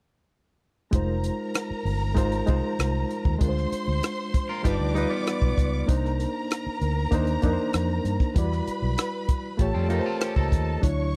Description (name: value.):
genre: lush 1970s-style soul.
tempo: 97 BPM.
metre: 4/4.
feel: straight.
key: unclear.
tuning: A4 = 440 Hz.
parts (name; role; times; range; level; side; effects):
warm symphonic violin section; second line; 0.9-11.2 s; A4 to D6; -36 LUFS; equal; none.
barky reed electric piano; accompaniment; 0.9-11.2 s; F#3 to D5; -31 LUFS; equal; overdrive, fast tremolo.
vintage muted fingered electric bass; bass; 0.9-11.2 s; F1 to G2; -29 LUFS; equal; none.
compact cocktail drum kit; drums; 0.9-11.0 s; hi-hat, kick drum, rim click; -27 LUFS; equal; none.
electric guitar at the edge of break-up; riff; 4.5-5.8, 9.7-10.8 s; G3 to Bb4; -36 LUFS; equal; spring reverb.
room: little or no reverb.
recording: dry, close 1970s-style studio recording.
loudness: -26 LUFS.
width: mono.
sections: 0.9-11.2 A section.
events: none.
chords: 0.9 Fm7; 3.4 Dm7b5; 4.6 G7b13; 5.9 Cm9; 8.4 Em9; 9.6 A7alt.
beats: | 0.93 1.55 2.17 2.79 | 3.41 4.03 4.65 5.27 | 5.89 6.51 7.12 7.74 | 8.36 8.98 9.60 10.21 | 10.83.